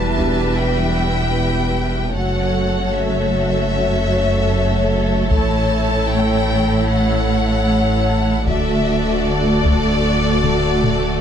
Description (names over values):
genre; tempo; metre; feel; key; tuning
cinematic, hybrid orchestral and electronic film score; 76 BPM; 4/4; straight; unclear; A4 = 440 Hz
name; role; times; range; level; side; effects
warm symphonic violin section; melody; 0.0-11.2 s; D5 to A5; -24 LUFS; left 4 dB; none
rich symphonic violin section; second line; 0.0-11.2 s; A4 to E5; -24 LUFS; left 1 dB; none
rich symphonic viola section; accompaniment; 0.0-11.2 s; G3 to G4; -24 LUFS; right 2 dB; none
dark French horn section; sustained chords; 0.0-11.2 s; A3 to C#5; -24 LUFS; left 4 dB; none
rich symphonic cello section; bass; 0.0-11.2 s; D2 to A2; -23 LUFS; right 1 dB; none
rich symphonic double bass section; bass; 0.0-11.2 s; E1 to D2; -23 LUFS; right 4 dB; none
saturated sub bass; bass; 0.0-11.2 s; D1 to A1; -24 LUFS; equal; none
taiko ensemble; drums; 0.2-0.6, 5.3-11.2 s; none; -21 LUFS; left 1 dB; none
felt-muted upright piano; texture; 0.2-11.2 s; D4 to A5; -32 LUFS; left 2 dB; none
room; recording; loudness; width
light reverb; close, detailed microphones; -15 LUFS; side -8 dB against mid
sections
0.0-11.2 A section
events
drum fill 10.4-11.2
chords
0.0 Em; 2.2 F#m7; 5.3 A; 8.5 D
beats
0.58 1.37 | 2.16 2.95 3.73 4.53 | 5.31 6.10 6.89 7.68 | 8.47 9.26 10.05 10.84